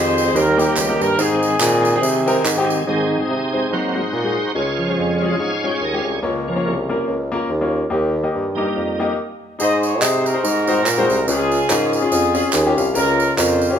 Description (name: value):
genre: uptempo gospel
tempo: 143 BPM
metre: 4/4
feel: swing 57% on 8ths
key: Ab major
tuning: A4 = 440 Hz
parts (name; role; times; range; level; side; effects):
- warm horn section; melody; 0.0-2.5, 9.6-13.8 s; C4 to Eb5; -20 LUFS; equal; none
- clear baby grand piano; accompaniment; 0.0-13.8 s; Ab2 to Ab5; -22 LUFS; left 3 dB; none
- bright tonewheel organ; sustained chords; 0.0-9.1 s; Eb3 to G5; -23 LUFS; right 2 dB; slow rotary speaker, overdrive, chorus vibrato
- mellow bassoon; bass; 0.0-13.8 s; C2 to C3; -20 LUFS; right 1 dB; none
- tambourine and handclaps; percussion; 0.2-2.8, 9.6-13.7 s; none; -24 LUFS; right 3 dB; none
room: moderate large studio reverb, RT60 1.3 s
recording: band playing live in one room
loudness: -16 LUFS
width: side -8 dB against mid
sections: 0.0-2.9 A section; 2.9-9.6 B section; 9.6-13.8 A section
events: tonewheel organ solo 2.9-9.6; stop 9.2-9.6; grand piano fill 12.3-12.9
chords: 0.4 Eb; 1.2 Ab; 3.7 Ab7; 4.5 Db; 6.2 Bbm; 7.9 Eb; 9.6 Ab; 10.4 Ab7; 11.3 Db; 12.9 Bbm/Db